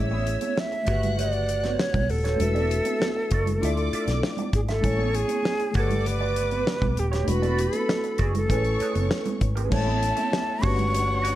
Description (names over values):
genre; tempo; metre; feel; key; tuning
lush 1970s-style soul; 98 BPM; 4/4; straight; A major; A4 = 440 Hz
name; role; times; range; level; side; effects
breathy hollow jazz flute; melody; 0.0-11.4 s; F#4 to C#6; -27 LUFS; right 1 dB; none
warm symphonic violin section; second line; 0.0-11.4 s; C#4 to F#6; -36 LUFS; left 1 dB; none
mellow reed electric piano; accompaniment; 0.0-11.4 s; C#3 to G#5; -31 LUFS; left 3 dB; fast tremolo
vintage muted fingered electric bass; bass; 0.0-11.4 s; D#1 to D2; -26 LUFS; equal; none
electric guitar through a small old amp; riff; 0.1-11.4 s; C#4 to E5; -36 LUFS; right 7 dB; wah, analog chorus
congas; percussion; 0.1-11.4 s; none; -34 LUFS; right 6 dB; none
damped 70s drum kit; drums; 0.3-11.4 s; crash cymbal, hi-hat, kick drum, snare drum; -28 LUFS; equal; none
room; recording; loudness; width
light reverb; dark, warm production; -22 LUFS; side -14 dB against mid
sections
0.0-9.7 A section; 9.7-11.4 B section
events
none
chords
0.0 Amaj7; 0.9 Gmaj9#11; 2.4 E9sus4; 3.6 Dmadd9; 4.8 Amaj7; 5.8 Gmaj9#11; 7.3 E9sus4; 8.5 Amaj9; 9.7 Amaj7; 10.6 Gmaj9#11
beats
0.57 1.18 1.79 | 2.40 3.01 3.62 4.23 | 4.84 5.45 6.06 6.67 | 7.28 7.89 8.50 9.11 | 9.72 10.33 10.94